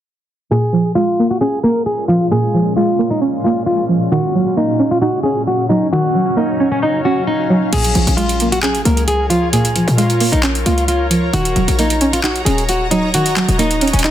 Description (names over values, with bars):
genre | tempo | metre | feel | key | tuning
hip hop, trap | 133 BPM | 4/4 | half-time | Bb minor | A4 = 438 Hz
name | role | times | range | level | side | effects
nylon-string guitar | melody | 0.5-14.1 s | Db4 to Bb4 | -18 LUFS | left 1 dB | low-pass filter, digital delay
string-like resonator pluck | accompaniment | 0.5-14.1 s | Bb2 to Eb4 | -17 LUFS | right 2 dB | chorus, low-pass filter
granular cloud pad | sustained chords | 1.3-14.1 s | Bb2 to Bb5 | -22 LUFS | left 1 dB | built-in reverb
short 808-style bass | bass | 7.7-14.1 s | Eb1 to Bb2 | -18 LUFS | left 1 dB | none
trap drum kit | drums | 7.7-14.1 s | crash cymbal, handclaps, hi-hat | -20 LUFS | right 1 dB | none
room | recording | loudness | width
light reverb | dense, heavily limited modern master, low-pass filter | -13 LUFS | side -11 dB against mid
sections
0.5-7.7 A section; 7.7-14.1 B section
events
filter sweep 0.5-7.7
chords
0.5 Bbm7; 4.1 Ebm7; 7.7 Bbm7; 11.3 Ebm7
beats
| 0.51 0.96 1.41 1.86 | 2.31 2.76 3.21 3.67 | 4.12 4.57 5.02 5.47 | 5.92 6.37 6.82 7.28 | 7.73 8.18 8.63 9.08 | 9.53 9.98 10.43 10.88 | 11.34 11.79 12.24 12.69 | 13.14 13.59 14.04